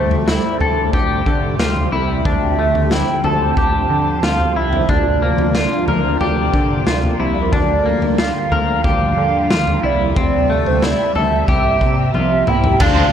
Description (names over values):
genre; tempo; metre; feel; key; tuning
dream pop; 91 BPM; 4/4; straight; D minor; A4 = 438 Hz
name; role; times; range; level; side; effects
warbly nostalgic lead; melody; 0.0-13.1 s; C5 to A5; -21 LUFS; right 4 dB; chorus, digital delay
phased string machine; sustained chords; 0.0-13.1 s; C3 to E5; -22 LUFS; equal; ensemble chorus, phaser
electric guitar at the edge of break-up; arpeggios; 0.0-13.1 s; A3 to Bb4; -20 LUFS; left 5 dB; analog chorus, digital delay
fat analog bass; bass; 0.0-13.1 s; C2 to D3; -20 LUFS; equal; none
raw garage drum kit; drums; 0.1-13.0 s; crash cymbal, kick drum, snare drum, tambourine, toms; -20 LUFS; equal; none
overdriven electric guitar; accompaniment; 12.8-13.1 s; D3 to C4; -19 LUFS; right 6 dB; tremolo, ensemble chorus
room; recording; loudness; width
light reverb, small room ambience; none; -14 LUFS; side -8 dB against mid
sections
0.0-12.8 A section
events
drum fill 12.1-12.8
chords
0.0 Dm9; 4.9 C9sus4/D; 10.2 Am7/D; 11.5 C7